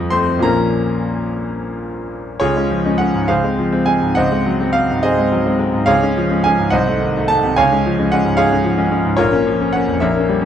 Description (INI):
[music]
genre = classical, romantic character piece for solo piano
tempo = 59-77 BPM (dotted quarters)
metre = 6/8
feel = rubato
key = Db major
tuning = A4 = 437 Hz
[part]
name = bright grand piano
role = solo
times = 0.0-10.5 s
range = Bb1 to Eb6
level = -14 LUFS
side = equal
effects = none
[sound]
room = moderate large studio reverb, RT60 1.0 s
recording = dark, warm production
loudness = -14 LUFS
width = side -9 dB against mid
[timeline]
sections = 0.0-2.4 A section; 2.4-10.5 B section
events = none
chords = 0.4 Bbm; 2.4 Db; 3.3 Fm/Db; 4.2 Ab7/Db; 5.9 Db; 6.7 Cdim7; 7.6 Db; 9.2 Bbm